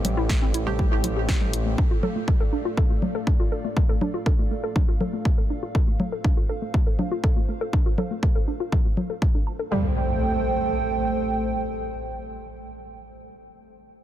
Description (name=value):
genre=melodic techno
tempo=121 BPM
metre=4/4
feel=straight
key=A minor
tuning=A4 = 440 Hz
part: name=dark analog pad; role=sustained chords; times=0.0-13.1 s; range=A3 to G5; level=-30 LUFS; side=right 2 dB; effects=chorus, sidechain pumping
part: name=warbly dusty pluck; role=arpeggios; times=0.0-9.9 s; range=G3 to A5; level=-30 LUFS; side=equal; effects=chorus, sidechain pumping, digital delay
part: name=filtered dub chord stab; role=stabs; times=0.0-1.0 s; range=C3 to G4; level=-36 LUFS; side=right 3 dB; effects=chorus, sidechain pumping, digital delay
part: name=gritty driven synth bass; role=bass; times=0.0-1.8 s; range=A1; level=-27 LUFS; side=equal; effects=sidechain pumping
part: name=punchy analog drum machine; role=drums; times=0.0-9.1 s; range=congas, hi-hat, snare drum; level=-29 LUFS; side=left 2 dB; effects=sidechain pumping on hats, sidechain pumping on perc
part: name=electronic kick drum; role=drums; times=0.3-9.3 s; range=none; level=-21 LUFS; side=equal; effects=none
part: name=impact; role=sound effects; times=9.7-13.1 s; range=none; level=-29 LUFS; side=equal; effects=none
room=little or no reverb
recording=dense, heavily limited modern master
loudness=-21 LUFS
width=side -12 dB against mid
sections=0.0-9.7 A section; 9.7-13.7 B section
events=filter sweep on synth arpeggio sound 0.0-9.7; filter sweep on analog synth pad 0.0-9.7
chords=0.0 Am7; 1.8 Dm/A; 9.7 Am7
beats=0.29 0.79 1.29 | 1.78 2.28 2.77 3.27 | 3.77 4.26 4.76 5.25 | 5.75 6.24 6.74 7.24 | 7.73 8.23 8.72 9.22 | 9.71 10.21 10.71 11.20 | 11.70 12.20 12.69